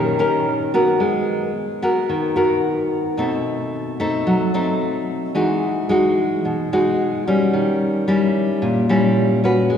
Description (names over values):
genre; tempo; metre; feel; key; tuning
bossa nova; 110 BPM; 4/4; straight; G# minor; A4 = 440 Hz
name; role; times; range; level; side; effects
warm cello; second line; 0.0-0.7 s; D#3; -34 LUFS; right 3 dB; none
nylon-string guitar; accompaniment; 0.0-9.8 s; A#2 to B4; -17 LUFS; left 1 dB; none
room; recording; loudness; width
wet church reverb, RT60 3.0 s; recorded in a church or concert hall; -17 LUFS; side -8 dB against mid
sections
0.0-1.0 A section; 1.0-9.8 B section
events
none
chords
0.0 D#7; 1.0 G#m9; 3.2 B7b9; 5.4 Emaj9; 7.5 D#7b9